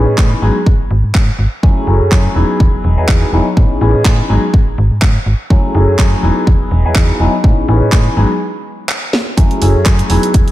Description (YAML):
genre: filtered disco house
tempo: 124 BPM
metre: 4/4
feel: swing 55% on 16ths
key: F# dorian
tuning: A4 = 440 Hz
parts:
  - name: warm baby grand piano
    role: accompaniment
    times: 0.0-10.5 s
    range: E3 to G#4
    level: -16 LUFS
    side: left 1 dB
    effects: phaser, vintage 12-bit sampler grit, sidechain pumping, low-pass filter
  - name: slap-like FM bass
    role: bass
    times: 0.0-10.5 s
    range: E1 to A2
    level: -13 LUFS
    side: equal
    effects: sidechain pumping, low-pass filter
  - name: electronic kick drum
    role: drums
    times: 0.2-10.4 s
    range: none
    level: -11 LUFS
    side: equal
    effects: none
  - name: house drum kit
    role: drums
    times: 0.2-10.5 s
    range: handclaps, hi-hat, snare drum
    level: -20 LUFS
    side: right 1 dB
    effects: none
room: light reverb, digital ambience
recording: none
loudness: -10 LUFS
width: side -15 dB against mid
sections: 0.0-10.5 A section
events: break 8.4-9.4; drum fill 9.1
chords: 0.4 N.C.; 1.6 F#m9; 2.4 Emaj9; 3.6 Amaj9#11; 4.3 N.C.; 5.5 F#m9; 6.2 Emaj9; 7.4 Amaj9#11; 8.2 G#m7; 9.4 F#m9